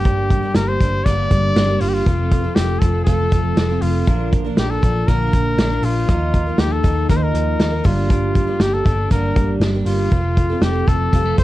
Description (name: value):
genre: jangly indie pop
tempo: 119 BPM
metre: 4/4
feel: straight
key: unclear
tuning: A4 = 437 Hz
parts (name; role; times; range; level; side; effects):
- clear trumpet; melody; 0.0-11.4 s; F4 to D5; -23 LUFS; left 3 dB; none
- picked twelve-string acoustic guitar; accompaniment; 0.0-11.4 s; G2 to Bb4; -24 LUFS; right 5 dB; none
- twelve-string electric guitar; arpeggios; 0.0-11.4 s; F2 to Eb4; -25 LUFS; left 2 dB; none
- vintage muted picked electric bass; bass; 0.0-11.4 s; F1 to Eb2; -21 LUFS; equal; none
- vintage drum kit; drums; 0.1-11.4 s; hi-hat, kick drum, snare drum; -18 LUFS; equal; none
room: light reverb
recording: dark, warm production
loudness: -15 LUFS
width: side -16 dB against mid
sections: 0.0-11.4 A section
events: none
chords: 0.0 Gm; 2.1 F; 4.1 Bb; 6.1 Ebsus2; 7.9 Gm; 10.1 F